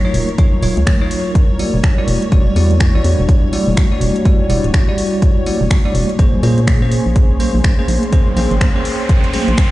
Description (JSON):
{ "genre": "deep house", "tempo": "124 BPM", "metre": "4/4", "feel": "swing 60% on 16ths", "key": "unclear", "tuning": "A4 = 440 Hz", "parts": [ { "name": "warm analog pad", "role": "sustained chords", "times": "0.0-9.7 s", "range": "Gb3 to C6", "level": "-25 LUFS", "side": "equal", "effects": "chorus, vintage 12-bit sampler grit, sidechain pumping" }, { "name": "bell-like tine electric piano", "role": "stabs", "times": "0.0-9.5 s", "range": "Gb3 to D5", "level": "-20 LUFS", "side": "equal", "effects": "medium stereo tremolo, vintage 12-bit sampler grit, sidechain pumping, tape echo" }, { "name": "soft string machine", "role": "texture", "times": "0.0-9.7 s", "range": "Db5", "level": "-28 LUFS", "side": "left 1 dB", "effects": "phaser, ensemble chorus" }, { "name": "organ-like FM bass", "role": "bass", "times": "0.1-9.6 s", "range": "D1 to Bb2", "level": "-15 LUFS", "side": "equal", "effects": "tube saturation, sidechain pumping" }, { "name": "punchy analog drum machine", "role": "drums", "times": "0.1-9.7 s", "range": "finger snaps, hi-hat", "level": "-25 LUFS", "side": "equal", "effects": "overdrive" }, { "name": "congas", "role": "percussion", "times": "0.1-9.6 s", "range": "none", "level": "-24 LUFS", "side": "right 1 dB", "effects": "sidechain pumping on perc" }, { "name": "electronic kick drum", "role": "drums", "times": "0.4-9.7 s", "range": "none", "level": "-12 LUFS", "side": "equal", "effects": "overdrive" }, { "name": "riser", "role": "sound effects", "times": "7.8-9.7 s", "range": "none", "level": "-26 LUFS", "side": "right 1 dB", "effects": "none" } ], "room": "digital ambience", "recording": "played on a big sound system in a bare room, stone room reverb, nothing above 10.5 kHz", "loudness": "-12 LUFS", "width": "side -17 dB against mid", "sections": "0.0-9.7 A section", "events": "riser 7.8-9.7", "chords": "0.0 Ebm9; 1.4 Em9; 6.2 Bbm9" }